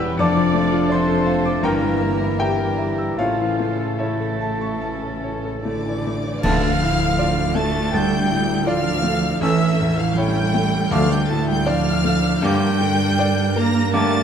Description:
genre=classical, romantic movement for piano and orchestra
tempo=70-84 BPM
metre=4/4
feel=rubato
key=D minor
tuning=A4 = 440 Hz
part: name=clear concert grand piano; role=melody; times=0.0-14.2 s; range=A1 to E6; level=-22 LUFS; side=left 2 dB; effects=none
part: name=warm chamber violin section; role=melody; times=0.0-14.2 s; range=A4 to Bb6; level=-30 LUFS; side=left 2 dB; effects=none
part: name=concert flute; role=second line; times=0.0-14.2 s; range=D5 to D6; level=-30 LUFS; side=left 1 dB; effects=none
part: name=warm studio violin section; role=second line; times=0.0-14.2 s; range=G3 to Bb5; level=-31 LUFS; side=left 1 dB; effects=none
part: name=rich chamber viola section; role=accompaniment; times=0.0-14.2 s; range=C#4 to D5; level=-30 LUFS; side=right 3 dB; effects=none
part: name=bright trombone section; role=sustained chords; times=0.0-14.2 s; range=C#3 to Bb3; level=-30 LUFS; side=right 3 dB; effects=none
part: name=clear French horn section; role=sustained chords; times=0.0-14.2 s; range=E3 to A4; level=-31 LUFS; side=left 3 dB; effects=none
part: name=rich chamber cello section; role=bass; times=0.0-14.2 s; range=E2 to Bb3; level=-25 LUFS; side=right 3 dB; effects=none
part: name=rich chamber double bass section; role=bass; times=0.0-14.2 s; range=E1 to G2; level=-27 LUFS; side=right 4 dB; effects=none
part: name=warm clarinet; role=second line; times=0.2-14.2 s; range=A3 to E4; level=-29 LUFS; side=left 1 dB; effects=none
part: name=warm oboe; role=second line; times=0.2-14.2 s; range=D5 to Bb5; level=-31 LUFS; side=right 2 dB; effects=none
part: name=cymbal swell, clash cymbals and concert bass drum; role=percussion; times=3.2-7.9 s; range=none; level=-31 LUFS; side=equal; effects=none
part: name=timpani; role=percussion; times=6.4-12.0 s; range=D3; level=-28 LUFS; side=equal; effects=none
room=moderate scoring stage reverb, RT60 2.0 s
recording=none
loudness=-17 LUFS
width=side -8 dB against mid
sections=0.0-6.4 A section; 6.4-14.2 B section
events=band accent 6.4-7.2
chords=0.2 Dm/F; 1.6 Edim/G; 3.2 A; 6.4 Dm; 9.4 A7; 10.9 Dm; 12.4 Gm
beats=| 0.20 0.91 1.64 2.39 | 3.18 3.99 4.79 5.63 | 6.43 7.18 7.93 8.68 | 9.42 10.17 10.92 11.67 | 12.43 13.19 13.93

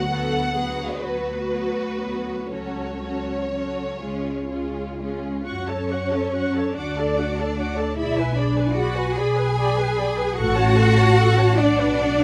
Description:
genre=classical, slow romantic movement for string orchestra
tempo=38-51 BPM (dotted quarters)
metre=6/8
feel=rubato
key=F# minor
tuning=A4 = 440 Hz
part: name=rich symphonic violin section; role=melody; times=0.0-12.2 s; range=B4 to D6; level=-34 LUFS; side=equal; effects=none
part: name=warm symphonic violin section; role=second line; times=0.0-12.2 s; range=E#4 to G#5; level=-31 LUFS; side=equal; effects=none
part: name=rich symphonic viola section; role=accompaniment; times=0.0-12.2 s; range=F#3 to A5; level=-30 LUFS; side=equal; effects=none
part: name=rich symphonic cello section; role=bass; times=0.0-12.2 s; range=C#4 to A4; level=-27 LUFS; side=equal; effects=none
part: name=warm symphonic double bass section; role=bass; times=0.0-12.2 s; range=A1 to F#2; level=-27 LUFS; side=equal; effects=none
room=light reverb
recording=dark, warm production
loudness=-22 LUFS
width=mono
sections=0.0-5.5 A section; 5.5-12.2 B section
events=none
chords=0.0 Bm/D; 2.5 F#m/C#; 4.0 C#; 5.5 F#m; 6.8 D; 8.0 G#dim/B; 10.4 F#m/A; 11.6 Bm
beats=1.02 | 2.51 4.02 | 5.47 6.76 | 7.98 9.17 | 10.37 11.58

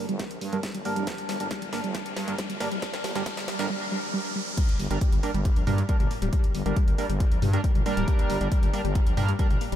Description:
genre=driving peak-time techno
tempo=137 BPM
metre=4/4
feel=straight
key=G minor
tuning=A4 = 440 Hz
part: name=tight sequenced synth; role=riff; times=0.0-9.8 s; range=G3 to Bb3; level=-32 LUFS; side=equal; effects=chorus, sidechain pumping, ping-pong delay
part: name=sync-sweep polysynth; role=stabs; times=0.0-9.5 s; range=G3 to Bb4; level=-31 LUFS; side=right 2 dB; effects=chorus, sidechain pumping, ping-pong delay
part: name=riser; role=sound effects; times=0.0-4.6 s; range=none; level=-39 LUFS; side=left 1 dB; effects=none
part: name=growling FM bass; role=bass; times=0.1-9.8 s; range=D1 to G2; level=-29 LUFS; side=equal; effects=sidechain pumping, high-pass filter
part: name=techno drum kit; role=drums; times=0.1-9.8 s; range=crash cymbal, hi-hat, snare drum, toms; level=-37 LUFS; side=right 1 dB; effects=sidechain pumping on hats, high-pass filter on hats, high-pass filter on snare, sidechain pumping on cymbals, high-pass filter on cymbals, sidechain pumping on toms, high-pass filter on toms, high-pass filter on room
part: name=electronic kick drum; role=drums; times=0.2-9.5 s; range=none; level=-25 LUFS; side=equal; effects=high-pass filter on kick, high-pass filter on room
room=light reverb, digital ambience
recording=none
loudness=-24 LUFS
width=side -11 dB against mid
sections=0.0-4.6 A section; 4.6-9.8 B section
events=build-up 0.0-4.6; drum fill 0.0-3.7; riser 0.0-4.6; filter sweep on synth arpeggio sound 0.0-4.6; filter sweep on analog polysynth 0.0-4.6; drop 4.6-9.8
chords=0.0 Gm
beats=0.20 0.63 | 1.07 1.51 1.95 2.39 | 2.82 3.26 3.70 4.14 | 4.58 5.01 5.45 5.89 | 6.33 6.76 7.20 7.64 | 8.08 8.52 8.96 9.39

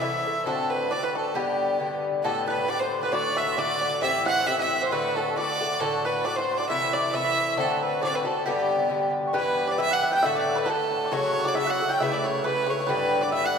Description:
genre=celtic folk, Celtic polka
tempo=135 BPM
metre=2/4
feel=swing 54% on 8ths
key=G major, E dorian from 9.3 s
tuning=A4 = 440 Hz
part: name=bright fiddle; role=melody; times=0.0-13.6 s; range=G4 to G5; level=-26 LUFS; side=right 3 dB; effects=none
part: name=bluegrass banjo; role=second line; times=0.0-13.6 s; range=G4 to G5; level=-32 LUFS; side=right 3 dB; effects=none
part: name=mellow hollow mid whistle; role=second line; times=0.0-13.6 s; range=G5 to G6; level=-32 LUFS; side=left 2 dB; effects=none
part: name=Irish bouzouki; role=accompaniment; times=0.0-13.6 s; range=G2 to B4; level=-27 LUFS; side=left 3 dB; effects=none
room=wet church reverb, RT60 3.6 s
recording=recorded in a church or concert hall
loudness=-22 LUFS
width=side -6 dB against mid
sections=0.0-2.2 A section; 2.2-9.3 A section; 9.3-13.6 B section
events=none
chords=0.5 D7; 1.4 G; 2.2 Gadd9; 3.1 D; 4.0 Am7; 4.9 D; 6.7 Am; 7.6 D7; 8.5 G; 9.3 Em; 10.2 D; 11.1 F#m; 12.0 Aadd9; 12.9 G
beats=0.02 | 0.46 0.91 | 1.35 1.80 | 2.25 2.69 | 3.14 3.58 | 4.03 4.47 | 4.91 5.36 | 5.80 6.25 | 6.69 7.13 | 7.58 8.02 | 8.46 8.90 | 9.35 9.79 | 10.23 10.67 | 11.12 11.56 | 12.00 12.44 | 12.88 13.32

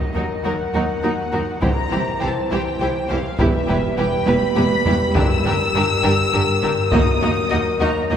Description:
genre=cinematic, epic orchestral film score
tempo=68 BPM (dotted quarters)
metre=6/8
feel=straight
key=unclear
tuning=A4 = 440 Hz
part: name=rich symphonic violin section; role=melody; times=0.0-8.1 s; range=Eb5 to E6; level=-24 LUFS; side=left 4 dB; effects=none
part: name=mellow French horn section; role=sustained chords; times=0.0-8.2 s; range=Eb3 to C5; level=-24 LUFS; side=left 1 dB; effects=none
part: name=warm symphonic violin section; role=second line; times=0.1-8.2 s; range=Gb4 to Eb5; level=-26 LUFS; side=left 1 dB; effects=none
part: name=rich symphonic cello section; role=bass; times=0.1-8.2 s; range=C2 to G2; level=-25 LUFS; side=right 2 dB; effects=none
part: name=rich symphonic double bass section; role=bass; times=0.1-8.2 s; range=E1 to Eb2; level=-26 LUFS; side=right 1 dB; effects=none
part: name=rich symphonic viola section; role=accompaniment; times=0.2-8.2 s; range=E3 to E4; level=-26 LUFS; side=right 1 dB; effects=none
part: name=solo taiko drums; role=drums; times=1.6-7.5 s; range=none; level=-24 LUFS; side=equal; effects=none
room=wet church reverb, RT60 3.1 s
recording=recorded in a church or concert hall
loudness=-16 LUFS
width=side -8 dB against mid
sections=0.0-8.2 A section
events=drum fill 4.3-5.2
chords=0.0 Ebm; 1.6 C; 3.4 Em; 5.2 Gm; 6.9 Ebm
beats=0.73 | 1.62 2.50 | 3.39 4.27 | 5.16 6.04 | 6.92 7.81

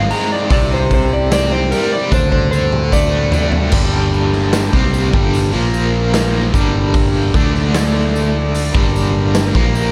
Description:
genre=psychedelic rock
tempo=75 BPM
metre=4/4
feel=straight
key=G minor from 3.7 s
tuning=A4 = 440 Hz
part: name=electric slide guitar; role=melody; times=0.0-3.7 s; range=Bb4 to Bb5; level=-22 LUFS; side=equal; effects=tape echo
part: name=combo organ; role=sustained chords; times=0.0-9.9 s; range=F3 to Eb5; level=-28 LUFS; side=equal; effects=none
part: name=biting overdriven guitar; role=riff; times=0.0-9.9 s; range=G2 to Eb4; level=-21 LUFS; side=equal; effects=tremolo
part: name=fingered electric bass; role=bass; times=0.0-9.9 s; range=G1 to D2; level=-20 LUFS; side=equal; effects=none
part: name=tanpura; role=drone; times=0.0-9.9 s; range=G2 to G3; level=-31 LUFS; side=equal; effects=none
part: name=raw garage drum kit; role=drums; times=0.1-9.7 s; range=crash cymbal, hi-hat, kick drum, snare drum, toms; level=-20 LUFS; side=equal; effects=none
part: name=tambourine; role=percussion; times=0.5-9.9 s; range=none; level=-38 LUFS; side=equal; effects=none
room=studio reverb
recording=none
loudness=-15 LUFS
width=mono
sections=0.0-3.7 A section; 3.7-9.9 B section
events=electric slide guitar solo 0.0-3.7; drum fill 2.1-3.7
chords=0.0 Ab; 0.5 C; 2.1 D7; 3.7 Gm; 5.5 Bb5; 6.5 Gm; 7.3 D5; 8.7 Gm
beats=| 0.51 1.32 2.12 2.92 | 3.73 4.53 5.34 6.14 | 6.94 7.75 8.55 9.35

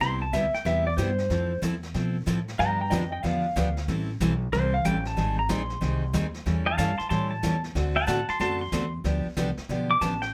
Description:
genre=country, western swing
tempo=186 BPM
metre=4/4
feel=swing 64% on 8ths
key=unclear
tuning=A4 = 439 Hz
part: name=pedal steel guitar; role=second line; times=0.0-10.3 s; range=C5 to D6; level=-30 LUFS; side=equal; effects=none
part: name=picked steel-string acoustic guitar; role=accompaniment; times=0.0-10.1 s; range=C3 to A4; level=-31 LUFS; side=equal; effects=none
part: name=upright bass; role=bass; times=0.0-10.3 s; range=Ab1 to B2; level=-32 LUFS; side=equal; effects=none
part: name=jazz brush drum kit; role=drums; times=0.0-10.3 s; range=brushed snare drum, hi-hat, kick drum, snare drum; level=-41 LUFS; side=equal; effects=none
room=moderate club reverb, RT60 0.6 s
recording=none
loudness=-26 LUFS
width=mono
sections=0.0-10.3 A section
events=pedal steel guitar solo 0.0-10.3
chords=0.0 Cmaj7; 1.3 Fmaj7; 2.6 G7; 3.9 Am7; 5.2 Abmaj7; 6.5 A7; 7.8 D7; 9.0 G7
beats=| 0.01 0.33 0.66 0.98 | 1.30 1.62 1.95 2.27 | 2.59 2.92 3.24 3.56 | 3.88 4.21 4.53 4.85 | 5.17 5.50 5.82 6.14 | 6.46 6.79 7.11 7.43 | 7.75 8.08 8.40 8.72 | 9.05 9.37 9.69 10.02

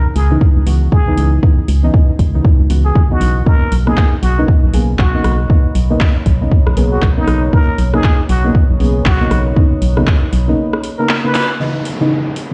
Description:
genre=deep house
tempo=118 BPM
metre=4/4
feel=swing 60% on 16ths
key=B major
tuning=A4 = 440 Hz
part: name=trumpet with plunger mute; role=melody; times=0.0-11.5 s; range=D#4 to B4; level=-25 LUFS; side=equal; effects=tape echo
part: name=deep mellow chord stab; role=stabs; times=0.0-12.5 s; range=C#3 to G#4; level=-21 LUFS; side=equal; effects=analog chorus, sidechain pumping, tape echo
part: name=organ-like FM bass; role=bass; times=0.2-10.5 s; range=B1 to C#2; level=-16 LUFS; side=equal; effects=sidechain pumping
part: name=deep house drum kit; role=drums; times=0.2-12.5 s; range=handclaps, hi-hat, rim click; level=-25 LUFS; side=equal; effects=none
part: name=electronic kick drum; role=drums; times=0.4-10.2 s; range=none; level=-14 LUFS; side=equal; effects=none
part: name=deep dark ambient pad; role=sustained chords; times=5.4-12.5 s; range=E3 to D#6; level=-32 LUFS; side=equal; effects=chorus, built-in reverb, sidechain pumping
part: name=downlifter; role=sound effects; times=11.6-12.5 s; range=none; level=-26 LUFS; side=equal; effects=none
room=light reverb, digital ambience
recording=played on a big sound system in a bare room, cassette tape, large studio reverb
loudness=-13 LUFS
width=mono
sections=0.0-11.6 A section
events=break 10.6-11.6; drum fill 11.3; band accent 11.3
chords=0.0 C#m9; 3.5 Bmaj9; 11.6 C#m9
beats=0.41 0.92 | 1.43 1.94 2.45 2.96 | 3.46 3.97 4.48 4.99 | 5.50 6.01 6.51 7.02 | 7.53 8.04 8.55 9.06 | 9.57 10.07 10.58 11.09 | 11.60 12.11

